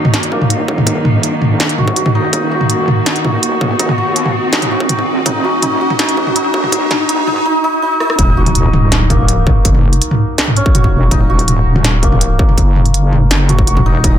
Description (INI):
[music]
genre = half-time drum and bass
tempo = 164 BPM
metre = 4/4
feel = half-time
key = Eb minor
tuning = A4 = 440 Hz
[part]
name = dark studio cello section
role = sustained chords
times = 0.0-7.4 s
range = Eb3 to Gb4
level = -20 LUFS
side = equal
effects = sidechain pumping
[part]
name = santur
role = arpeggios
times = 0.0-14.2 s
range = Bb3 to Gb4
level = -17 LUFS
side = equal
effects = low-pass filter, dub echo
[part]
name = industrial drum kit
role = drums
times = 0.0-14.1 s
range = hi-hat, rim click, snare drum, toms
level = -15 LUFS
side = equal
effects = none
[part]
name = riser and impact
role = sound effects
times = 0.4-9.7 s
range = none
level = -21 LUFS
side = equal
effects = none
[part]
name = deep soft wobble bass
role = bass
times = 0.3-14.2 s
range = Eb1 to Eb2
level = -16 LUFS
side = equal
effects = chorus, tube saturation, high-pass filter
[part]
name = electronic kick drum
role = drums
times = 0.3-14.1 s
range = none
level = -15 LUFS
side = equal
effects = distortion, high-pass filter on kick, high-pass filter on room
[sound]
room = light reverb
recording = dense, heavily limited modern master, high-pass filter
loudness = -10 LUFS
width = side -10 dB against mid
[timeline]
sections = 0.0-8.2 A section; 8.2-14.2 B section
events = build-up 0.0-8.2; filter sweep on santur 0.0-8.2; riser 0.4-7.5; drum fill 8.0; drop 8.2-14.2; impact 8.2-9.7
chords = 0.0 Eb5